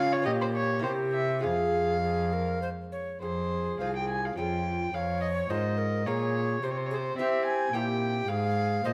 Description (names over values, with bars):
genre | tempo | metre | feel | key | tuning
classical, baroque-style sonata movement with continuo | 100-109 BPM | 3/4 | straight | F minor | A4 = 440 Hz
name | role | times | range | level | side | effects
alto recorder | melody | 0.0-8.9 s | F4 to Db5 | -36 LUFS | equal | none
dark violin | second line | 0.0-8.9 s | C5 to Ab5 | -34 LUFS | equal | none
lute | accompaniment | 0.0-8.9 s | F2 to Bb4 | -39 LUFS | equal | none
warm cello | bass | 0.0-8.9 s | C2 to C4 | -34 LUFS | equal | none
room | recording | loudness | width
light reverb | close, detailed microphones | -29 LUFS | mono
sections
0.0-3.2 A section; 3.2-8.9 B section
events
none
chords
0.3 Gm7b5/Bb; 0.8 C7; 1.4 Fm; 4.4 Db/F; 4.9 Bbm/F; 6.6 C; 7.7 C7/Bb; 8.3 Fm/Ab